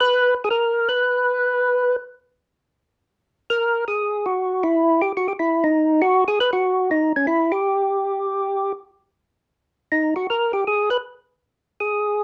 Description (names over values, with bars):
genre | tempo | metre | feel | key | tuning
jazz | 160 BPM | 4/4 | swing 66% on 8ths | G# minor | A4 = 440 Hz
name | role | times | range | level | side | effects
percussive tonewheel organ | solo | 0.0-12.2 s | C#4 to B4 | -20 LUFS | equal | slow rotary speaker, overdrive
room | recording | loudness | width
moderate small room reverb, RT60 0.5 s | close, detailed microphones | -21 LUFS | mono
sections
0.0-9.1 A section; 9.1-12.2 B section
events
tonewheel organ solo 9.1-12.2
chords
none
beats
| 0.11 0.49 0.86 1.24 | 1.61 1.99 2.37 2.74 | 3.12 3.49 3.87 4.25 | 4.62 5.00 5.37 5.75 | 6.12 6.50 6.88 7.25 | 7.63 8.00 8.38 8.76 | 9.13 9.51 9.88 10.26 | 10.63 11.01 11.38 11.76 | 12.14